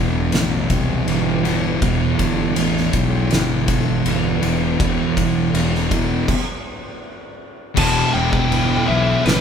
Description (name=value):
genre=stoner and doom metal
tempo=80 BPM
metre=4/4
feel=straight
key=E minor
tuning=A4 = 440 Hz
part: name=thick fuzz guitar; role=riff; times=0.0-9.4 s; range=E2 to E3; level=-22 LUFS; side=left 4 dB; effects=distortion
part: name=thick fuzz guitar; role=riff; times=0.0-9.4 s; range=E2 to E3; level=-22 LUFS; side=right 4 dB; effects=distortion
part: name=fuzz fingered electric bass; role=bass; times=0.0-9.4 s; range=E1 to C2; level=-23 LUFS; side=equal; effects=overdrive
part: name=oversized low-tuned drum kit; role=drums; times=0.3-9.4 s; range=crash cymbal, kick drum, ride cymbal, snare drum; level=-22 LUFS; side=equal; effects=none
part: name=fuzz lead guitar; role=melody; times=7.8-9.4 s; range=B4 to A5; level=-21 LUFS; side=left 3 dB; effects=distortion
part: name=heavy high-gain guitar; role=riff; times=7.8-9.4 s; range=E3 to B4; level=-23 LUFS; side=equal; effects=distortion
room=light reverb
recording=band playing live in one room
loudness=-16 LUFS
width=side -7 dB against mid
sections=0.0-7.8 A section; 7.8-9.4 B section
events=stop 6.3-7.8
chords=0.0 Em